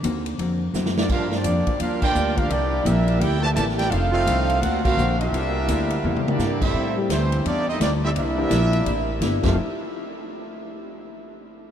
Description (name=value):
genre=jazz, big band swing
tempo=170 BPM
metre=4/4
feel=swing 63% on 8ths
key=unclear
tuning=A4 = 440 Hz
part: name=vintage hollow-body jazz guitar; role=accompaniment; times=0.0-9.6 s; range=F2 to A4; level=-31 LUFS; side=left 5 dB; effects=none
part: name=upright bass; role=bass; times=0.0-9.6 s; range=F1 to A2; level=-23 LUFS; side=equal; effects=none
part: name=swinging big-band drum kit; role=drums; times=0.0-9.5 s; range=crash cymbal, hi-hat, kick drum, ride cymbal, snare drum, toms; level=-28 LUFS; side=equal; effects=none
part: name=clear trumpet section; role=melody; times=1.0-9.6 s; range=A3 to A5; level=-26 LUFS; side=right 1 dB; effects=none
part: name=bright trombone section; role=second line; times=1.0-9.6 s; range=F2 to G4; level=-27 LUFS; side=right 3 dB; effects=none
part: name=warm baby grand piano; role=accompaniment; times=7.0-9.6 s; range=E3 to G4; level=-32 LUFS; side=left 4 dB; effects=none
room=moderate huge ambient reverb, RT60 7.6 s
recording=in a vast, echoing space, faint mains hum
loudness=-19 LUFS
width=side -9 dB against mid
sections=0.0-6.7 A section; 6.7-9.6 B section; 9.6-11.0 C section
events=drum fill 0.7-1.1, 6.0-6.4; band accent 2.0, 4.8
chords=0.0 D7alt; 1.1 Gm7; 2.5 C13; 3.9 F6; 4.6 D7alt; 5.3 C13; 6.7 Am7; 8.2 C9; 9.4 F9; 9.6 N.C.